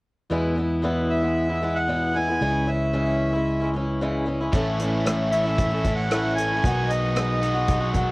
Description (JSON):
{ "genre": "folk rock and heartland rock", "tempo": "114 BPM", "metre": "4/4", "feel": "straight", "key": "E major", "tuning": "A4 = 438 Hz", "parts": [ { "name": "picked swing-style acoustic guitar", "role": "accompaniment", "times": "0.3-8.1 s", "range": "E2 to F#4", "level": "-25 LUFS", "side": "left 1 dB", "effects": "cassette tape" }, { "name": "picked electric bass", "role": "bass", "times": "0.3-8.1 s", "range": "A1 to E2", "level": "-26 LUFS", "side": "equal", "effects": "none" }, { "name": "accordion", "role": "melody", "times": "1.1-7.9 s", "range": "D#5 to G#5", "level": "-26 LUFS", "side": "equal", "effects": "cassette tape" }, { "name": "biting overdriven guitar", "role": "riff", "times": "4.5-8.1 s", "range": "A2 to F#4", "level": "-30 LUFS", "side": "right 1 dB", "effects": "cassette tape" }, { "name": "natural country drum kit", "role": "drums", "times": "4.5-8.1 s", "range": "hi-hat, kick drum, rim click", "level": "-26 LUFS", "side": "equal", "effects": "cassette tape" } ], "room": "little or no reverb", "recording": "home recording on cassette", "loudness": "-21 LUFS", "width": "side -24 dB against mid", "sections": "0.3-8.1 A section", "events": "none", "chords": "0.3 E; 2.4 C#m; 4.5 A; 6.6 B6" }